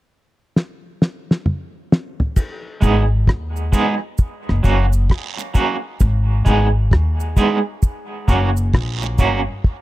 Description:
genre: dub reggae.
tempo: 66 BPM.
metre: 4/4.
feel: swing 64% on 16ths.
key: G# minor.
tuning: A4 = 440 Hz.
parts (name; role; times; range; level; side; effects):
cloth-damped thuddy drum kit; drums; 0.6-9.8 s; crash cymbal, hi-hat, kick drum, rim click, snare drum, toms; -15 LUFS; equal; none.
cabasa and guiro; percussion; 2.4-9.5 s; none; -33 LUFS; right 9 dB; dub echo.
electric guitar at the edge of break-up; accompaniment; 2.8-9.4 s; F#3 to G#4; -21 LUFS; right 3 dB; tremolo, dub echo.
upright bass; bass; 2.8-9.5 s; F#1 to D#2; -17 LUFS; equal; none.
room: studio ambience.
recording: dry, close 1970s-style studio recording.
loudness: -16 LUFS.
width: side -16 dB against mid.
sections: 0.0-2.4 A section; 2.4-9.8 B section.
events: drum fill 0.6-2.4; part muted 9.6.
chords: 0.0 N.C.; 2.4 G#m; 4.2 F#; 6.0 G#m; 7.8 F#.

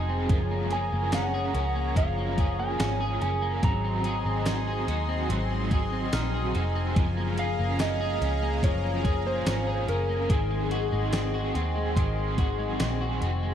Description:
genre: dream pop.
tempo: 72 BPM.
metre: 4/4.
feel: straight.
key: Ab mixolydian.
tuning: A4 = 440 Hz.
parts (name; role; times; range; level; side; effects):
overdriven electric guitar; accompaniment; 0.0-13.5 s; Ab2 to Bb4; -35 LUFS; right 3 dB; tremolo, ensemble chorus.
lush unison pad; sustained chords; 0.0-13.5 s; Ab4 to C6; -34 LUFS; equal; chorus.
electric guitar at the edge of break-up; arpeggios; 0.0-13.5 s; Eb3 to Ab4; -33 LUFS; left 3 dB; analog chorus, digital delay.
vintage muted picked electric bass; bass; 0.0-13.5 s; F1 to Eb2; -29 LUFS; equal; none.
gated 80s digital drum machine; drums; 0.3-13.4 s; hi-hat, kick drum, snare drum, tambourine; -28 LUFS; equal; gated reverb, gated reverb snare.
electric slide guitar; melody; 0.7-12.8 s; Ab4 to Bb5; -32 LUFS; right 1 dB; digital delay.
soft synth bell; texture; 4.5-13.5 s; C6 to Ab6; -44 LUFS; right 5 dB; none.
room: light reverb.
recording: dark, warm production.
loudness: -24 LUFS.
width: side -9 dB against mid.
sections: 0.0-13.5 A section.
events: none.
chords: 0.3 Gbmaj9; 3.6 Ab7; 7.0 Gbmaj9; 10.3 Ab7.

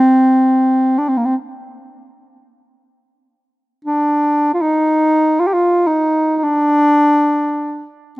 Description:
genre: arabic.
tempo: free time.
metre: none.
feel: none.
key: unclear.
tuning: A4 = 440 Hz.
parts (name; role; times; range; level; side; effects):
warm bass clarinet; solo; 0.0-7.9 s; Bb3 to G4; -12 LUFS; equal; none.
room: small room ambience.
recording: rough home demo mix.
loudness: -12 LUFS.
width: side -20 dB against mid.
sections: 0.0-8.2 A section.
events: none.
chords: none.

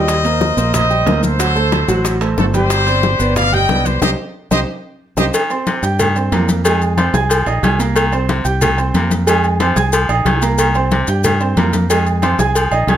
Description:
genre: latin, salsa.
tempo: 183 BPM.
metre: 4/4.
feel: straight.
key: C minor.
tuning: A4 = 439 Hz.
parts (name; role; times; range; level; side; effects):
bright trumpet section; melody; 0.0-5.3 s; F#4 to G5; -17 LUFS; left 1 dB; none.
warm grand piano; accompaniment; 0.0-13.0 s; F#3 to Ab6; -19 LUFS; right 3 dB; none.
fingered electric bass; bass; 0.0-13.0 s; G1 to G2; -17 LUFS; equal; none.
bongos and cowbell; percussion; 0.1-13.0 s; none; -22 LUFS; left 3 dB; none.
congas; percussion; 0.1-13.0 s; none; -22 LUFS; left 3 dB; none.
maracas; percussion; 0.1-13.0 s; none; -28 LUFS; left 6 dB; none.
timbales and agogo bells; percussion; 0.1-13.0 s; none; -22 LUFS; right 4 dB; none.
raspy baritone saxophone; second line; 5.3-13.0 s; C3 to F3; -22 LUFS; left 4 dB; none.
room: light reverb.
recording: close, detailed microphones.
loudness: -13 LUFS.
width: side -10 dB against mid.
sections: 0.0-5.3 A section; 5.3-13.0 B section.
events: band accent 4.0-5.3; drum fill 4.5-5.3.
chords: 0.1 Eb6; 1.4 D7; 2.7 Gsus4; 4.0 Cm; 5.3 Cm7; 6.6 Fm7; 8.0 Cm7; 9.3 Fm7; 10.6 Cm7; 11.9 Fm7.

